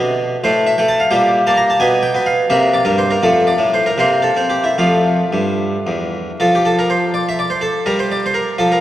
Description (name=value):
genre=classical, baroque-style suite movement for harpsichord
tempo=72-88 BPM (dotted quarters)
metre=6/8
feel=rubato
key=F major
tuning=A4 = 442 Hz
part: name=harpsichord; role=solo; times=0.0-8.8 s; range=E2 to Bb5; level=-13 LUFS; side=equal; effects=none
room=wet cathedral reverb, RT60 4.1 s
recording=worn, warbling old tape, cassette tape, warbly pitch drift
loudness=-13 LUFS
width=side -13 dB against mid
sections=0.0-6.4 A section; 6.4-8.8 B section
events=none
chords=0.4 N.C.; 1.1 Gm/Bb; 1.8 N.C.; 2.5 C5; 3.2 F; 4.0 C7; 4.8 F; 6.4 N.C.